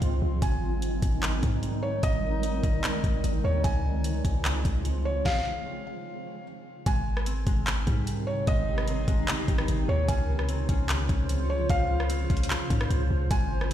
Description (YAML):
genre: hip hop, atmospheric cloud-rap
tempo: 149 BPM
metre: 4/4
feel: half-time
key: Ab major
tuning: A4 = 442 Hz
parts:
  - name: granular cloud pad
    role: sustained chords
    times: 0.0-13.7 s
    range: C3 to C5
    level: -33 LUFS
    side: equal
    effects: built-in reverb, sidechain pumping
  - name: warm 808-style bass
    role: bass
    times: 0.0-13.7 s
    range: Ab1 to Ab2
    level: -28 LUFS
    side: equal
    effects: none
  - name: smooth R&B drum kit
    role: drums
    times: 0.0-13.7 s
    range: handclaps, hi-hat, kick drum, rim click, snare drum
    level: -28 LUFS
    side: equal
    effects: none
  - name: felt-muted upright piano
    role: melody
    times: 0.4-13.7 s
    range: Db5 to Ab5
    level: -34 LUFS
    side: equal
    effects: ping-pong delay
  - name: Celtic harp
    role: arpeggios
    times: 6.9-13.7 s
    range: Db3 to G4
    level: -36 LUFS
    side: left 2 dB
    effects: ping-pong delay
room: little or no reverb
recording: played on a big sound system in a bare room, stone room reverb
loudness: -24 LUFS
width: side -11 dB against mid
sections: 0.0-6.9 A section; 6.9-13.7 B section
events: stop 5.3-6.9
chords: 0.4 Abmaj7; 3.6 Dbmaj7; 6.9 Abmaj7; 10.1 Dbmaj7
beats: 0.02 | 0.42 0.82 1.23 1.63 | 2.03 2.43 2.84 3.24 | 3.64 4.04 4.45 4.85 | 5.25 5.66 6.06 6.46 | 6.86 7.27 7.67 8.07 | 8.47 8.88 9.28 9.68 | 10.09 10.49 10.89 11.29 | 11.70 12.10 12.50 12.90 | 13.31 13.71